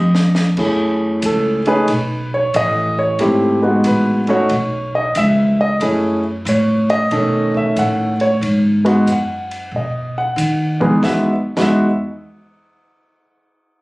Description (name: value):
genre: jazz piano trio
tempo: 92 BPM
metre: 4/4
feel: swing 66% on 8ths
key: E major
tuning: A4 = 440 Hz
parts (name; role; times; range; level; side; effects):
- warm grand piano; melody; 0.0-11.9 s; E2 to F#5; -15 LUFS; equal; none
- upright bass; bass; 0.0-11.9 s; G#1 to D#3; -19 LUFS; equal; none
- compact cocktail drum kit; drums; 0.1-11.7 s; crash cymbal, hi-hat, kick drum, ride cymbal, snare drum; -29 LUFS; equal; none
room: light reverb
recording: recorded on a phone in the room, club reverb, compression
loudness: -14 LUFS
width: side -22 dB against mid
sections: 0.6-11.0 A section; 11.0-13.6 B section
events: drum fill 0.0-0.6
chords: 0.0 F7(no3); 0.6 F#m9; 1.9 Aadd9; 3.2 C#9sus4; 4.5 Bsus2; 5.8 F#m9; 7.1 B9; 8.4 B5 (rootless); 9.7 B; 11.0 Emaj9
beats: | 0.58 1.23 1.89 2.54 | 3.19 3.85 4.50 5.15 | 5.80 6.46 7.11 7.76 | 8.41 9.07 9.72 10.37 | 11.02 11.68